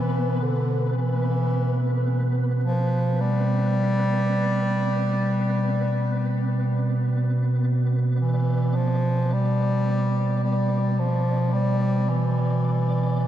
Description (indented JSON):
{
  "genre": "dark ambient drone",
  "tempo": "free time",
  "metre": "none",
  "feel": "none",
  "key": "E phrygian",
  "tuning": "A4 = 441 Hz",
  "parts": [
    { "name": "mellow bass clarinet", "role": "melody", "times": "0.0-13.3 s", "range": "D3 to G3", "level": "-26 LUFS", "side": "left 2 dB", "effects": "tape echo" },
    { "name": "deep rumbling drone", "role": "drone", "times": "0.0-13.3 s", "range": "B2", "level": "-23 LUFS", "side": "right 1 dB", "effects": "built-in reverb" },
    { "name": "flickering grainy texture", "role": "texture", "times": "0.0-13.3 s", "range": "B3 to D5", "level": "-32 LUFS", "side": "right 1 dB", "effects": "built-in reverb" }
  ],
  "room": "moderate huge ambient reverb, RT60 8.0 s",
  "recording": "cassette tape",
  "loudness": "-21 LUFS",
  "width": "side -11 dB against mid",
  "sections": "0.0-13.3 A section",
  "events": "fade-out on synth texture 0.0-13.3",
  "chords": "0.0 E5"
}